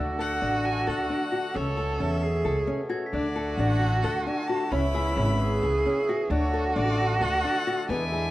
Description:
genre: contemporary instrumental, chamber music in an uneven meter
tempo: 265 BPM (eighths)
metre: 7/8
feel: straight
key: unclear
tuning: A4 = 441 Hz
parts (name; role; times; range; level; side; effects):
- rich cello; second line; 0.0-8.3 s; E4 to A4; -29 LUFS; right 3 dB; none
- hand-pumped harmonium; sustained chords; 0.0-8.3 s; B2 to F#4; -33 LUFS; left 1 dB; none
- nylon-string guitar; arpeggios; 0.0-8.3 s; B3 to A4; -31 LUFS; left 2 dB; none
- upright bass; bass; 0.0-8.3 s; G#1 to E2; -28 LUFS; equal; none
- glockenspiel with soft plastic mallets; texture; 0.0-0.1, 2.9-8.1 s; E6 to B6; -42 LUFS; left 2 dB; none
- clear violin; melody; 0.2-8.3 s; C#5 to B5; -34 LUFS; left 4 dB; none
room: moderate studio reverb, RT60 0.5 s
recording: worn, warbling old tape, cassette tape, warbly pitch drift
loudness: -24 LUFS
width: side -16 dB against mid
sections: 0.0-8.3 A section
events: none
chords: 0.0 D; 1.5 Aadd9/C#; 3.1 D; 4.7 C#m7; 6.3 D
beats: 0.19 0.42 0.64 0.87 1.10 1.32 | 1.55 1.77 2.00 2.23 2.45 2.68 2.91 | 3.13 3.36 3.58 3.81 4.04 4.26 4.49 | 4.72 4.95 5.17 5.40 5.62 5.85 6.08 | 6.30 6.53 6.76 6.99 7.21 7.44 7.67 | 7.89 8.12

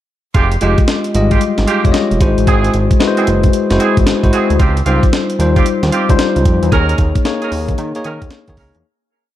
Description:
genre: R&B, new jack swing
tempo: 113 BPM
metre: 4/4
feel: swing 64% on 16ths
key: F minor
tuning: A4 = 440 Hz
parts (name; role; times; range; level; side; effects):
- mellow horn section; stabs; 0.3-8.7 s; Ab3 to Bb4; -20 LUFS; right 6 dB; digital delay
- fat analog bass; bass; 0.3-8.8 s; F1 to Eb3; -16 LUFS; equal; none
- breakbeat sampler-style drum kit; drums; 0.3-8.8 s; hi-hat, kick drum, snare drum; -15 LUFS; equal; none
- bell-like tine electric piano; accompaniment; 0.6-8.9 s; G3 to Eb5; -15 LUFS; left 3 dB; auto-pan
room: light reverb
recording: dark, warm production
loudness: -11 LUFS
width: side -13 dB against mid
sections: 0.3-8.8 verse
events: fade-out 6.7-8.8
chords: 0.3 Fm9; 2.2 Ab7alt; 4.6 Dbmaj9#11; 6.7 Eb7sus4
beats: | 0.35 0.88 1.41 1.94 | 2.47 3.00 3.53 4.06 | 4.59 5.12 5.66 6.19 | 6.72 7.25 7.78 8.31

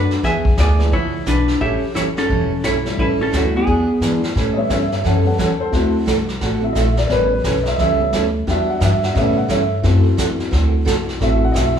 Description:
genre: country, western swing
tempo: 175 BPM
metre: 4/4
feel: swing 62% on 8ths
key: A mixolydian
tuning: A4 = 440 Hz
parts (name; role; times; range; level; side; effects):
- vintage hollow-body jazz guitar; melody; 0.0-4.2 s; A3 to E5; -19 LUFS; equal; none
- upright bass; bass; 0.0-11.8 s; E1 to A2; -19 LUFS; equal; none
- vintage brush drum kit; drums; 0.1-11.8 s; brushed snare drum, hi-hat, kick drum, snare drum; -24 LUFS; equal; none
- picked steel-string acoustic guitar; accompaniment; 0.2-11.7 s; D3 to A4; -22 LUFS; right 4 dB; none
- warm upright piano; accompaniment; 0.8-11.8 s; C#3 to F#5; -20 LUFS; left 2 dB; none
room: wet large studio reverb, RT60 1.0 s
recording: band playing live in one room, small room ambience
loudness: -15 LUFS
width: side -8 dB against mid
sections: 0.0-4.4 A section; 4.4-11.8 B section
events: upright piano solo 4.4-11.8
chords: 0.2 E7; 1.6 A7; 3.7 E7; 4.4 A7; 5.7 D7; 7.1 A7; 8.5 Em7; 9.2 A7; 9.8 D7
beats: | 0.23 0.57 0.92 1.26 | 1.60 1.95 2.29 2.64 | 2.98 3.32 3.67 4.01 | 4.35 4.70 5.04 5.38 | 5.73 6.07 6.41 6.75 | 7.10 7.44 7.78 8.13 | 8.47 8.81 9.16 9.50 | 9.84 10.18 10.53 10.87 | 11.21 11.55

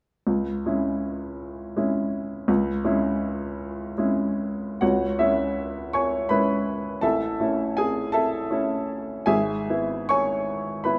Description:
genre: classical, romantic character piece for solo piano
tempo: 53 BPM (dotted quarters)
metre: 6/8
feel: uneven beats, rubato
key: C# minor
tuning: A4 = 440 Hz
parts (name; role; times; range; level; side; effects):
- clear baby grand piano; solo; 0.3-11.0 s; G#1 to C#6; -25 LUFS; equal; none
room: wet recital hall reverb, RT60 1.5 s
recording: none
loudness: -25 LUFS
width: mono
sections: 0.3-4.8 A section; 4.8-11.0 B section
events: none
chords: 0.3 C#m; 7.0 A; 9.3 E/G#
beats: | 0.26 1.40 | 2.48 3.57 | 4.81 5.95 | 7.03 8.14 | 9.27 10.49

